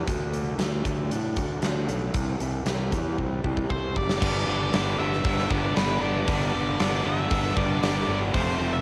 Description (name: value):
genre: quiet-loud alternative rock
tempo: 116 BPM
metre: 4/4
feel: straight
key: G mixolydian from 4.2 s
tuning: A4 = 439 Hz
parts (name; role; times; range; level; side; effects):
- electric guitar through a small old amp; arpeggios; 0.0-4.2 s; C3 to G4; -37 LUFS; equal; lush chorus, cassette tape
- fuzz fingered electric bass; bass; 0.0-8.8 s; F1 to A2; -31 LUFS; equal; overdrive
- huge arena drum kit; drums; 0.1-8.5 s; crash cymbal, hi-hat, kick drum, snare drum; -31 LUFS; equal; cassette tape
- octave-fuzz lead guitar; melody; 3.7-8.8 s; B4 to E5; -33 LUFS; equal; distortion, cassette tape
- distorted electric guitar; riff; 4.2-8.8 s; F2 to D4; -32 LUFS; equal; distortion, cassette tape
- overdriven electric guitar; riff; 4.2-8.8 s; F2 to D4; -33 LUFS; equal; cassette tape
room: light reverb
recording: home recording on cassette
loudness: -26 LUFS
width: mono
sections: 0.0-4.2 A section; 4.2-8.8 B section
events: drum fill 3.2-4.2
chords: 0.1 D; 2.1 C; 4.2 G